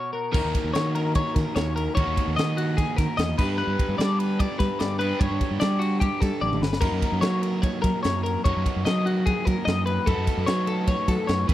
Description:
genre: math rock and midwest emo.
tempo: 148 BPM.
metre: 4/4.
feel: straight.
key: unclear.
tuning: A4 = 440 Hz.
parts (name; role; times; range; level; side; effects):
twelve-string electric guitar; arpeggios; 0.0-11.5 s; F#4 to D#5; -28 LUFS; left 4 dB; spring reverb.
overdriven electric guitar; riff; 0.3-11.5 s; D#3 to B4; -30 LUFS; right 3 dB; none.
growling fingered electric bass; bass; 0.3-11.5 s; G1 to G3; -26 LUFS; equal; overdrive.
crisp fusion drum kit; drums; 0.3-11.5 s; crash cymbal, kick drum, ride cymbal, snare drum, toms; -26 LUFS; equal; none.
room: little or no reverb.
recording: none.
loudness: -22 LUFS.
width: side -13 dB against mid.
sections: 0.3-11.5 A section.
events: break 0.0-0.3; drum fill 6.4-6.8.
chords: 0.3 D#m7; 3.4 G; 6.8 D#m7/F#; 10.1 B9/F#.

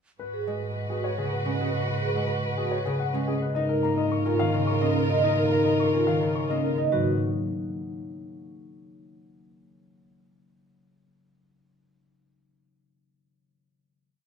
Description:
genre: classical, minimalist pattern music.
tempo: 107 BPM.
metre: 3/4.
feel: straight.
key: G# dorian.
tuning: A4 = 439 Hz.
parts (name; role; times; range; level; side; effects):
warm grand piano; melody; 0.2-7.2 s; G#4 to C#6; -31 LUFS; left 8 dB; none.
mellow hollow wooden-headed alto flute; second line; 0.2-6.7 s; A#4 to B4; -33 LUFS; right 5 dB; none.
dark chamber string section; sustained chords; 0.2-6.7 s; E#4 to B4; -32 LUFS; left 1 dB; none.
rich double bass; bass; 0.2-7.2 s; G#2; -31 LUFS; right 3 dB; none.
vibraphone with soft mallets; arpeggios; 0.3-7.2 s; C#4 to D#5; -30 LUFS; right 10 dB; none.
concert harp; accompaniment; 0.5-8.6 s; C#3 to D#4; -28 LUFS; left 3 dB; none.
room: moderate large studio reverb, RT60 1.4 s.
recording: minimal, uncompressed stereo recording, lossy compression artefacts.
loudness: -23 LUFS.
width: side -6 dB against mid.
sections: 0.2-6.9 A section; 6.9-8.6 final chord.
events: none.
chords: 0.2 G#m7; 3.6 A#m/G#; 6.9 G#7sus2.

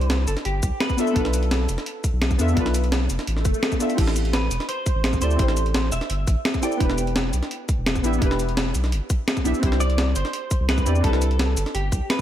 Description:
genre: liquid drum and bass.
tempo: 170 BPM.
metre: 4/4.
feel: straight.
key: A minor.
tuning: A4 = 440 Hz.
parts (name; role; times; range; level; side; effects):
clean electric guitar; melody; 0.0-2.0, 4.3-7.6, 9.8-12.2 s; G4 to G5; -30 LUFS; right 1 dB; ensemble chorus, tape echo.
deep mellow chord stab; accompaniment; 0.0-12.2 s; B3 to E5; -27 LUFS; left 1 dB; chorus, ping-pong delay.
saturated sub bass; bass; 0.0-12.0 s; E1 to E2; -23 LUFS; equal; none.
breakbeat sampler-style drum kit; drums; 0.0-12.2 s; crash cymbal, hi-hat, shaker, snare drum; -26 LUFS; equal; none.
electronic kick drum; drums; 0.6-12.2 s; none; -23 LUFS; equal; overdrive.
swell; sound effects; 3.4-4.0 s; none; -31 LUFS; equal; none.
room: light reverb, digital ambience.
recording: none.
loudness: -20 LUFS.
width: side -11 dB against mid.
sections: 0.0-12.2 A section.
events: swell 3.4-4.0.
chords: 0.0 C; 1.0 Bm7b5; 4.0 Am7; 6.8 Em7; 9.6 Cmaj7.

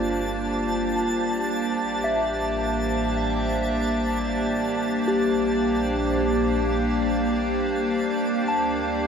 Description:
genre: ambient.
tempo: free time.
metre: none.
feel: none.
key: G dorian.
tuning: A4 = 440 Hz.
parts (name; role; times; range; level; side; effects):
evolving wavetable pad; sustained chords; 0.0-9.1 s; Bb3 to F5; -24 LUFS; equal; chorus, built-in reverb.
soft synth bell; arpeggios; 0.0-9.1 s; F4 to A5; -29 LUFS; left 2 dB; chorus, diffuse ambient delay.
deep rumbling drone; bass; 0.0-9.1 s; G1 to D2; -33 LUFS; equal; built-in reverb.
pedal harmonium; drone; 0.0-9.1 s; G3 to D4; -32 LUFS; right 1 dB; none.
twinkling granular texture; texture; 0.0-9.1 s; A5; -32 LUFS; right 1 dB; built-in reverb.
room: wet huge ambient reverb, RT60 8.3 s.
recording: none.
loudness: -22 LUFS.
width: side -7 dB against mid.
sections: 0.0-9.1 A section.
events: none.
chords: 0.0 Gm7; 1.4 Am7; 4.7 Gm7/Bb; 8.0 Dm7.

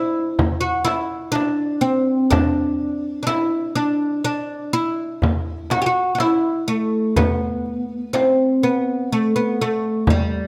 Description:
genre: Turkish makam ensemble.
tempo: 124 BPM (eighths).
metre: 10/8.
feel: straight.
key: unclear.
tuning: A4 = 440 Hz.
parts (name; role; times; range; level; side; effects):
oud; melody; 0.0-10.5 s; G3 to G4; -21 LUFS; equal; none.
darbuka; percussion; 0.4-10.3 s; none; -26 LUFS; equal; none.
frame drum; percussion; 0.4-10.3 s; none; -27 LUFS; equal; none.
room: light reverb.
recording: close, detailed microphones.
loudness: -20 LUFS.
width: mono.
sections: 0.0-10.5 A section.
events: none.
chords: none.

